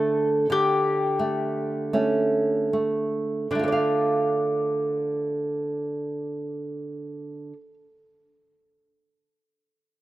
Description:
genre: romantic duo for mandolin and classical guitar.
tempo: 36-49 BPM.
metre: 4/4.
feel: rubato.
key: D minor.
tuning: A4 = 440 Hz.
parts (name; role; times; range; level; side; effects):
mandolin; melody; 0.0-7.5 s; D4 to A4; -27 LUFS; left 3 dB; none.
nylon-string guitar; accompaniment; 0.0-7.7 s; D3 to F5; -24 LUFS; right 2 dB; none.
room: moderate lush hall reverb, RT60 2.7 s.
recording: rough home demo mix.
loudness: -22 LUFS.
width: side -15 dB against mid.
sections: 0.0-3.5 A section; 3.5-9.4 B section.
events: slowing down 0.0-3.5.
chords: 0.0 A7/D; 3.5 Dm.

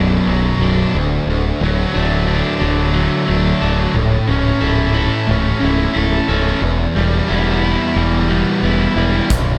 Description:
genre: classic rock.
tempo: 90 BPM.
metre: 4/4.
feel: straight.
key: unclear.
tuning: A4 = 440 Hz.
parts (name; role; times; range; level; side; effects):
crunchy overdriven guitar; riff; 0.0-9.6 s; B1 to A4; -19 LUFS; equal; none.
tight distorted guitar; riff; 0.0-9.6 s; B1 to A4; -23 LUFS; equal; distortion.
growling fingered electric bass; bass; 0.0-9.5 s; B0 to E1; -21 LUFS; equal; overdrive.
big rock drum kit; drums; 9.3-9.5 s; hi-hat, kick drum; -20 LUFS; equal; none.
room: moderate lush hall reverb, RT60 2.0 s.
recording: big arena sound.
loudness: -16 LUFS.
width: mono.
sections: 0.0-9.6 A section.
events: none.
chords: 0.0 Bm; 1.0 D; 4.0 A/C#; 6.6 Em.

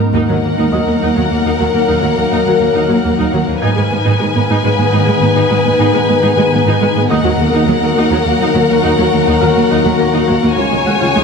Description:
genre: cinematic, hybrid orchestral and electronic film score.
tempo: 69 BPM (dotted quarters).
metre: 6/8.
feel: straight.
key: unclear.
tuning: A4 = 439 Hz.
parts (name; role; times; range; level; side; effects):
granular cloud pad; sustained chords; 0.0-11.2 s; D#3 to A#4; -18 LUFS; left 1 dB; built-in reverb.
felt-muted upright piano; texture; 0.0-11.2 s; D#5 to A#6; -27 LUFS; equal; ping-pong delay.
rich symphonic violin section; melody; 0.1-11.2 s; F#5 to G#5; -20 LUFS; left 4 dB; none.
rich studio violin section; second line; 0.1-11.2 s; A#4 to C#5; -20 LUFS; left 4 dB; none.
rich symphonic viola section; accompaniment; 0.1-11.2 s; F#3 to E#4; -20 LUFS; right 2 dB; none.
mellow French horn section; sustained chords; 0.1-11.2 s; D#3 to B4; -18 LUFS; left 5 dB; none.
rich symphonic cello section; bass; 0.1-11.2 s; C#2 to G#2; -16 LUFS; right 3 dB; none.
room: wet scoring stage reverb, RT60 1.5 s.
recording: none.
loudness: -10 LUFS.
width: side -5 dB against mid.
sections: 0.1-11.2 A section.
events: none.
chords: 0.1 D#m; 3.6 G#m; 7.1 D#m; 10.6 C#.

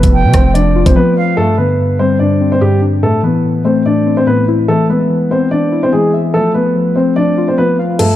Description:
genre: hip hop, drill.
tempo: 145 BPM.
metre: 4/4.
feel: half-time.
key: unclear.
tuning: A4 = 439 Hz.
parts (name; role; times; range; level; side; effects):
dark baby grand piano; melody; 0.0-8.2 s; G3 to D5; -14 LUFS; equal; low-pass filter, tape echo.
muted felt-like synth keys; accompaniment; 0.0-8.2 s; G2 to F5; -14 LUFS; left 3 dB; chorus, low-pass filter.
hard-hitting 808-style bass; bass; 0.0-1.0 s; F1 to C3; -13 LUFS; right 1 dB; none.
drill drum kit; drums; 0.0-1.0, 8.0-8.1 s; crash cymbal, hi-hat, kick drum, rim click; -12 LUFS; equal; none.
breathy concert flute; second line; 0.1-1.4 s; F5 to G5; -22 LUFS; right 6 dB; tape echo.
room: light reverb, digital ambience.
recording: dark, warm production.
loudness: -10 LUFS.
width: side -12 dB against mid.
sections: 0.0-1.4 A section; 1.4-8.0 B section.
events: silent gap 1.0-1.4; kick muted 8.0.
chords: 0.0 F; 1.4 Gsus4; 3.0 Am; 4.7 E; 6.3 F.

